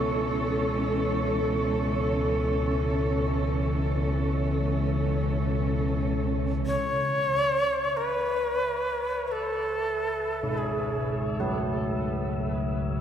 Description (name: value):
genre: dark ambient drone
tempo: free time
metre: none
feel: none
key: C# minor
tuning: A4 = 440 Hz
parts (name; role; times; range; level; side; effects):
- dark chamber cello section; sustained chords; 0.0-6.7 s; C#2 to A4; -28 LUFS; equal; none
- deep rumbling drone; drone; 0.0-13.0 s; C#2 to C#3; -30 LUFS; left 1 dB; built-in reverb
- wind-like tuned noise texture; texture; 0.0-13.0 s; C#5 to E5; -36 LUFS; right 2 dB; built-in reverb
- bright reedy shakuhachi; melody; 6.7-11.6 s; G#4 to C#5; -27 LUFS; equal; tape echo
- carillon bells; arpeggios; 10.4-13.0 s; G#2 to F#3; -29 LUFS; right 1 dB; tape echo
room: wet cathedral reverb, RT60 5.2 s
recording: none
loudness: -24 LUFS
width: side -9 dB against mid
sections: 0.0-6.7 A section; 6.7-13.0 B section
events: filter sweep on synth drone 0.0-6.7, 6.7-13.0; fade-in on synth texture 6.7-13.0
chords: 0.0 Aadd9/C#; 6.7 C#m